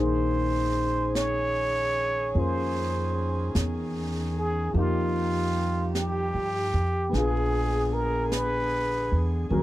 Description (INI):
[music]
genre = jazz ballad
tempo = 50 BPM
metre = 4/4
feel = swing 67% on 8ths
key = Bb minor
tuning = A4 = 440 Hz
[part]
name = trumpet with plunger mute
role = melody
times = 0.0-9.6 s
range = F4 to Db5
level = -28 LUFS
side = right 1 dB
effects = none
[part]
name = warm concert grand piano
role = accompaniment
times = 0.0-9.6 s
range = Eb3 to Bb4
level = -31 LUFS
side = left 3 dB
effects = none
[part]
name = edgy saxophone section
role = sustained chords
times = 0.0-9.6 s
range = D3 to Ab4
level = -37 LUFS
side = right 1 dB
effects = none
[part]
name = upright bass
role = bass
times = 0.0-9.6 s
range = Bb1 to G2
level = -28 LUFS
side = right 1 dB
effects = none
[part]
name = jazz brush drum kit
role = drums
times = 1.2-9.6 s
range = brushed snare drum, hi-hat, snare drum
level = -38 LUFS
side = right 1 dB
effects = none
[sound]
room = little or no reverb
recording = dry, close 1970s-style studio recording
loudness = -24 LUFS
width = side -15 dB against mid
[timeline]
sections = 0.0-9.6 A section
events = none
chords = 0.0 Bbm11; 4.8 Fsus2; 7.1 Bb7b9